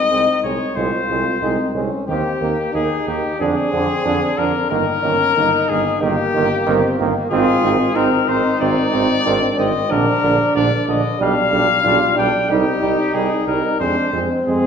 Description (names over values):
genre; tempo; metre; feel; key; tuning
classical, brass quintet; 92 BPM; 4/4; rubato; unclear; A4 = 438 Hz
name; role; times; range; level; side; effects
clear trumpet; melody; 0.0-14.7 s; G4 to G5; -19 LUFS; left 5 dB; none
clear French horn; accompaniment; 0.0-14.7 s; Bb3 to F4; -22 LUFS; left 1 dB; none
mellow flugelhorn; second line; 0.1-14.6 s; Bb3 to Eb4; -23 LUFS; right 4 dB; none
bright trombone; accompaniment; 0.1-14.6 s; D3 to Ab3; -24 LUFS; right 3 dB; none
mellow tuba; bass; 0.1-14.6 s; G1 to F2; -23 LUFS; right 2 dB; none
room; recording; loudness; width
wet recital hall reverb, RT60 1.4 s; recorded in a church or concert hall; -15 LUFS; side -7 dB against mid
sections
0.0-14.7 A section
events
none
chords
0.0 Ab/C; 2.1 Eb; 3.4 Ddim/F; 4.7 Eb/G; 7.3 Ab; 9.9 Bb; 11.2 G7/B; 12.5 Cm; 13.8 Fm